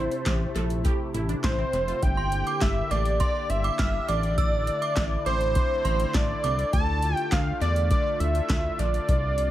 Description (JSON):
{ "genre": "synth-pop", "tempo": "102 BPM", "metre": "4/4", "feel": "straight", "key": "D minor", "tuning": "A4 = 441 Hz", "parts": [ { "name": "fat analog lead", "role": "melody", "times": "0.0-9.5 s", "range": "C5 to A5", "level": "-28 LUFS", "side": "equal", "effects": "tape echo" }, { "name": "sweeping resonant pad", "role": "sustained chords", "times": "0.0-9.5 s", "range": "C3 to G4", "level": "-34 LUFS", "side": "left 1 dB", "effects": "chorus, phaser" }, { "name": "wide unison pluck", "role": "arpeggios", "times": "0.0-2.0 s", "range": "C4 to A4", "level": "-35 LUFS", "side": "equal", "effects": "phaser, tape echo" }, { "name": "chorused synth bass", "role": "bass", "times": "0.0-9.5 s", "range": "F1 to E2", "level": "-27 LUFS", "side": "equal", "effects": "none" }, { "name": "electro analog drum machine", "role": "drums", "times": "0.1-9.5 s", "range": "handclaps, hi-hat, kick drum, snare drum", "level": "-27 LUFS", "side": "equal", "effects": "tape echo" }, { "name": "synth chime", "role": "second line", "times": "2.2-6.5 s", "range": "C6 to F6", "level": "-33 LUFS", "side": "right 5 dB", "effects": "ensemble chorus, tape echo" } ], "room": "light reverb", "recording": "echo-heavy mix", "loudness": "-22 LUFS", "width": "side -13 dB against mid", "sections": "0.0-2.0 A section; 2.0-9.5 B section", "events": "none", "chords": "0.0 Am; 2.0 Gm; 4.1 Asus4; 6.7 Dm" }